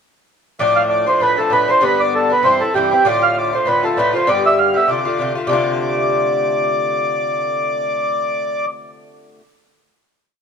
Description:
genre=celtic folk, Celtic reel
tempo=197 BPM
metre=4/4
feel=swing 56% on 8ths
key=D dorian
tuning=A4 = 441 Hz
part: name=mellow accordion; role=melody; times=0.6-8.7 s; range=G4 to F5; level=-16 LUFS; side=right 1 dB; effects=none
part: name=Irish bouzouki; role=accompaniment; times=0.6-9.4 s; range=G2 to G4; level=-20 LUFS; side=left 2 dB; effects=none
room=moderate recital hall reverb, RT60 1.5 s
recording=close, detailed microphones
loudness=-14 LUFS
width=side -6 dB against mid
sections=0.6-5.5 A section; 5.5-7.9 final chord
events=none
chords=0.6 Dm; 1.8 G; 2.4 C; 3.1 Dm; 4.3 G; 4.9 Dm7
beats=| 0.60 0.91 1.21 1.52 | 1.83 2.14 2.44 2.75 | 3.06 3.36 3.67 3.98 | 4.28 4.58 4.89 5.19 | 5.49 5.79 6.10 6.40 | 6.70 7.00 7.30 7.60

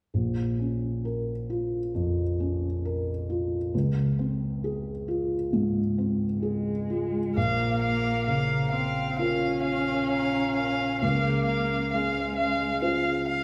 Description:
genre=neoclassical piano and strings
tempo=66 BPM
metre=4/4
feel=rubato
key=Bb minor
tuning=A4 = 440 Hz
part: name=felt-muted upright piano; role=accompaniment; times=0.1-13.4 s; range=Bb1 to C5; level=-29 LUFS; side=equal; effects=none
part: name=muted cello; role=second line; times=6.4-13.3 s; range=Ab3 to Db4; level=-33 LUFS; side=equal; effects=none
part: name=muted violin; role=melody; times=7.4-13.4 s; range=F5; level=-30 LUFS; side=equal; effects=none
part: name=marimba with medium hard mallets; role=arpeggios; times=7.4-13.4 s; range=Db4 to Bb5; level=-38 LUFS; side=equal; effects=none
room=wet recital hall reverb, RT60 1.4 s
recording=recorded in a church or concert hall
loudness=-27 LUFS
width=mono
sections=0.1-7.4 A section; 7.4-13.4 B section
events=none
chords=0.1 Bbm; 3.7 Dbmaj7; 7.4 Bbm; 11.0 Dbmaj7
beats=| 0.14 1.05 1.95 2.84 | 3.73 4.62 5.51 6.42 | 7.37 8.29 9.20 10.12 | 11.03 11.93 12.83

